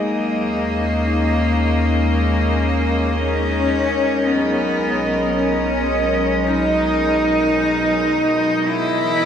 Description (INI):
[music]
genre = ambient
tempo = 55 BPM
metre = 4/4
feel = straight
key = unclear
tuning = A4 = 440 Hz
[part]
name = clear cello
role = melody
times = 0.0-9.3 s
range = A#3 to E4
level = -19 LUFS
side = left 1 dB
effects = tape echo
[part]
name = rich chamber string section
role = sustained chords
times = 0.0-9.3 s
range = B2 to D#5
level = -22 LUFS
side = equal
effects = none
[part]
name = deep rumbling drone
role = bass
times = 0.5-9.3 s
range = B1 to D#2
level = -24 LUFS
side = equal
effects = built-in reverb
[part]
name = analog drone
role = drone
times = 0.0-9.3 s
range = G#3 to D#5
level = -28 LUFS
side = equal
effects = chorus
[part]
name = drifting glass-harmonics texture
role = texture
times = 5.0-9.3 s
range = D#5 to D#6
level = -26 LUFS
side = right 4 dB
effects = chorus, built-in reverb
[sound]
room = wet cathedral reverb, RT60 5.4 s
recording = in a vast, echoing space, studio reverb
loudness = -16 LUFS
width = side -8 dB against mid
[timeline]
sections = 0.0-9.3 A section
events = fade-out on synth drone 0.0-9.3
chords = 0.0 D#7sus4; 4.3 Bmaj7; 8.7 F#9sus4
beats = 1.00 2.08 3.17 | 4.26 5.36 6.46 7.56 | 8.67